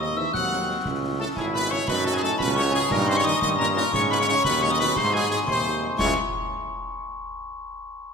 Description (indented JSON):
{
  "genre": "military-style march for wind band",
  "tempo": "117 BPM (dotted quarters)",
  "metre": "6/8",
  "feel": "straight",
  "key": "C# minor",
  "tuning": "A4 = 440 Hz",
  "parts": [
    { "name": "clear trumpet section", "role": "melody", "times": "0.0-6.1 s", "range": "G#4 to F#5", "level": "-27 LUFS", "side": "equal", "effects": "none" },
    { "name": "glockenspiel with hard plastic mallets", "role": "second line", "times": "0.0-6.2 s", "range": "G#5 to F#6", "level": "-27 LUFS", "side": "left 4 dB", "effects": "none" },
    { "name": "mellow euphonium", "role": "second line", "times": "0.0-6.1 s", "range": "G#2 to F#3", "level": "-33 LUFS", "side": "right 3 dB", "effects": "none" },
    { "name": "wooden piccolo", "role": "second line", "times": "0.0-6.2 s", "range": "G#5 to F#6", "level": "-30 LUFS", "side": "left 2 dB", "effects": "none" },
    { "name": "dark French horn section", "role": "accompaniment", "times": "0.0-6.1 s", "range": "F#3 to F#4", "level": "-35 LUFS", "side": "left 4 dB", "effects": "none" },
    { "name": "dark trombone section", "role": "sustained chords", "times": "0.0-6.1 s", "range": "E3 to E4", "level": "-31 LUFS", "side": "right 3 dB", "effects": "none" },
    { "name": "warm tuba", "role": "bass", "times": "0.0-6.1 s", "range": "G#1 to G#2", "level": "-28 LUFS", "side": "right 3 dB", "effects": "none" },
    { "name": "concert snare drum, concert bass drum and clash cymbals", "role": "drums", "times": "0.3-6.2 s", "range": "none", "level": "-35 LUFS", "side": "equal", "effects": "none" }
  ],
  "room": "wet scoring stage reverb, RT60 2.0 s",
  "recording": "minimal, uncompressed stereo recording",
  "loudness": "-21 LUFS",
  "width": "side -5 dB against mid",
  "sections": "0.0-6.0 A section; 6.0-7.0 B section",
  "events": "none",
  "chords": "0.0 G#7/D#; 0.9 C#m; 1.9 F#5; 2.9 D#7/G; 3.9 G#7sus4; 6.0 C#m"
}